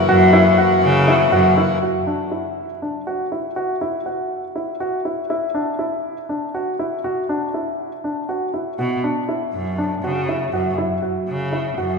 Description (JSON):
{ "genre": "contemporary instrumental, chamber music in an uneven meter", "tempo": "241 BPM (eighths)", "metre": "7/8", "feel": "straight", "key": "unclear", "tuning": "A4 = 440 Hz", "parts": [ { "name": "hand-pumped harmonium", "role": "sustained chords", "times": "0.0-1.8 s", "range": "E3 to F#4", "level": "-22 LUFS", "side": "left 3 dB", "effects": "none" }, { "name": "warm baby grand piano", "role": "arpeggios", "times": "0.0-12.0 s", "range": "D4 to F#4", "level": "-20 LUFS", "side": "equal", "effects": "none" }, { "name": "clear cello", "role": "bass", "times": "0.1-1.5, 8.8-12.0 s", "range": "F#2 to C#3", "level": "-19 LUFS", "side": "equal", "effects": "none" } ], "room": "wet church reverb, RT60 2.7 s", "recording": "recorded in a church or concert hall", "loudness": "-18 LUFS", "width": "side -4 dB against mid", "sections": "0.0-1.8 A section; 1.8-12.0 B section", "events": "none", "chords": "0.0 F#7; 1.8 Dadd9; 3.6 Esus2; 5.3 Dadd9; 8.8 Bmadd9 (rootless); 10.5 F#5" }